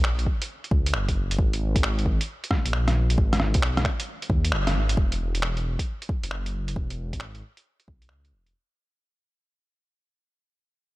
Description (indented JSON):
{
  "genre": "future garage",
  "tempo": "134 BPM",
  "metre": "4/4",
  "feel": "swing 66% on 16ths",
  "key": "unclear",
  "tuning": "A4 = 445 Hz",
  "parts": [
    { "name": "dark detuned saw bass", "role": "bass", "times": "0.0-8.5 s", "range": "E1 to D#2", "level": "-25 LUFS", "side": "equal", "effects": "tube saturation, sidechain pumping" },
    { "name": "lo-fi sampler-style drum kit", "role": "drums", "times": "0.0-8.5 s", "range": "finger snaps, hi-hat, rim click", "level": "-28 LUFS", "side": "equal", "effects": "overdrive, studio reverb" },
    { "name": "electronic kick drum", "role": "drums", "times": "0.3-8.0 s", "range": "none", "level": "-24 LUFS", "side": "equal", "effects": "overdrive, studio reverb" }
  ],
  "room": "little or no reverb",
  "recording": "none",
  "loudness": "-23 LUFS",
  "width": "side -19 dB against mid",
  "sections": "0.0-5.0 A section; 5.0-8.6 B section",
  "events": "kick drops out 4.5-5.0; band accent 4.5; fade-out 5.0-8.6",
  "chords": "none",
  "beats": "0.05 0.49 0.94 | 1.39 1.84 2.29 2.73 | 3.18 3.63 4.08 4.52 | 4.97 5.42 5.87 6.32 | 6.76 7.21 7.66 8.11"
}